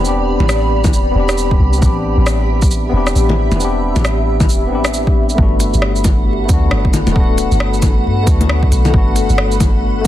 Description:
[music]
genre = future garage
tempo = 135 BPM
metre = 4/4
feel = swing 60% on 16ths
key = unclear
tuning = A4 = 440 Hz
[part]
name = tine electric piano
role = accompaniment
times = 0.0-10.1 s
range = A3 to G4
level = -20 LUFS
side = left 3 dB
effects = medium stereo tremolo, sidechain pumping, dub echo
[part]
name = granular cloud pad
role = sustained chords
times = 0.0-10.1 s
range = G4 to B5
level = -21 LUFS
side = right 1 dB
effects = built-in reverb, sidechain pumping
[part]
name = soft 808-style bass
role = bass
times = 0.0-10.1 s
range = D1 to G2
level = -16 LUFS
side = equal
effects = sidechain pumping
[part]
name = organic electronic drum kit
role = drums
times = 0.0-10.1 s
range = bongos, hi-hat, rim click, shaker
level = -19 LUFS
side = left 1 dB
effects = soft clipping on snare
[part]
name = electronic kick drum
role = drums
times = 0.8-10.1 s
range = none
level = -15 LUFS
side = equal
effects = overdrive
[sound]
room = digital ambience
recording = dense, heavily limited modern master, vinyl crackle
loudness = -11 LUFS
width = side -13 dB against mid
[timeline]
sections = 0.0-5.4 A section; 5.4-10.1 B section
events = none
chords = 0.0 Am11; 5.4 Gmaj9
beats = | 0.05 0.49 0.94 1.38 | 1.82 2.27 2.71 3.16 | 3.60 4.05 4.49 4.94 | 5.38 5.83 6.27 6.71 | 7.16 7.60 8.05 8.49 | 8.94 9.38 9.82

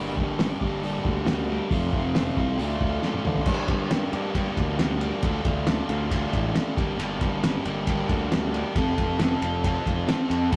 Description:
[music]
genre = indie rock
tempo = 136 BPM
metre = 4/4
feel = straight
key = G minor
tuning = A4 = 439 Hz
[part]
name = crunchy overdriven guitar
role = riff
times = 0.0-10.6 s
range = F2 to A4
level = -30 LUFS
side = equal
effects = none
[part]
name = fuzz fingered electric bass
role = bass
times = 0.0-10.6 s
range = F1 to D3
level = -31 LUFS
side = equal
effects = overdrive
[part]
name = cloth-damped thuddy drum kit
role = drums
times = 0.2-10.6 s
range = crash cymbal, hi-hat, kick drum, ride cymbal, snare drum, toms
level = -29 LUFS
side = equal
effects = none
[sound]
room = light reverb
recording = rough rehearsal-room recording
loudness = -25 LUFS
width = mono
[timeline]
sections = 0.0-3.5 A section; 3.5-10.6 B section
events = drum fill 3.0-3.5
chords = 0.0 Gm; 1.7 F; 2.6 Dm; 3.5 Gm; 5.2 Dm; 6.8 Gm; 8.8 F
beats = 0.40 0.84 1.27 | 1.71 2.15 2.59 3.03 | 3.47 3.91 4.35 4.79 | 5.23 5.67 6.11 6.55 | 6.99 7.43 7.88 8.32 | 8.76 9.20 9.64 10.08 | 10.53

